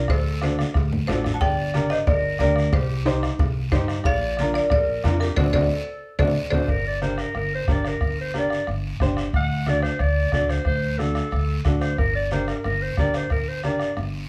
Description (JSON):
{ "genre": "latin, cumbia", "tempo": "182 BPM", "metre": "4/4", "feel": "straight", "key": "G harmonic minor from 6.7 s", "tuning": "A4 = 435 Hz", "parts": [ { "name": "buzzing marimba with hard mallets", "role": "melody", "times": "0.0-6.6 s", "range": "A4 to A5", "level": "-28 LUFS", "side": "equal", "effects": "none" }, { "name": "growling clarinet", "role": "second line", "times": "0.0-13.9 s", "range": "G4 to F#5", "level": "-30 LUFS", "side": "equal", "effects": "none" }, { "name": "upright bass", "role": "bass", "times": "0.0-14.2 s", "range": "G1 to G2", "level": "-28 LUFS", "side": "equal", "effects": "none" }, { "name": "bombo", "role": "percussion", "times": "0.1-14.1 s", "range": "none", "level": "-29 LUFS", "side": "equal", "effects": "none" }, { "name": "congas", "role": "percussion", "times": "0.1-14.1 s", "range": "none", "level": "-32 LUFS", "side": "equal", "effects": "none" }, { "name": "cowbell and timbales", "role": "percussion", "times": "0.1-6.6 s", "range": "none", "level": "-37 LUFS", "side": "equal", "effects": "none" }, { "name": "guiro", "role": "percussion", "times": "0.1-14.3 s", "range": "none", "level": "-41 LUFS", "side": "equal", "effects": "none" }, { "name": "warm upright piano", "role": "accompaniment", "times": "0.4-13.9 s", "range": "D4 to C5", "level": "-30 LUFS", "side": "equal", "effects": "none" } ], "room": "light reverb", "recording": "small room ambience", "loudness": "-23 LUFS", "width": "mono", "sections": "0.0-6.7 A section; 6.7-14.3 B section", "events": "drum fill 0.6-1.4, 5.7-6.7; band accent 5.4-6.7; clarinet solo 6.7-14.3", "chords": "0.1 D7; 1.4 Gm; 2.7 Cm; 4.1 Bb; 5.4 D7; 6.7 Gm; 9.3 D7; 12.0 Gm", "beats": "| 0.10 0.42 0.76 1.09 | 1.42 1.75 2.08 2.41 | 2.74 3.07 3.40 3.73 | 4.06 4.39 4.71 5.04 | 5.38 5.71 6.03 6.37 | 6.70 7.03 7.36 7.69 | 8.02 8.35 8.68 9.01 | 9.34 9.67 10.00 10.33 | 10.66 10.99 11.33 11.66 | 11.99 12.32 12.65 12.98 | 13.31 13.64 13.97" }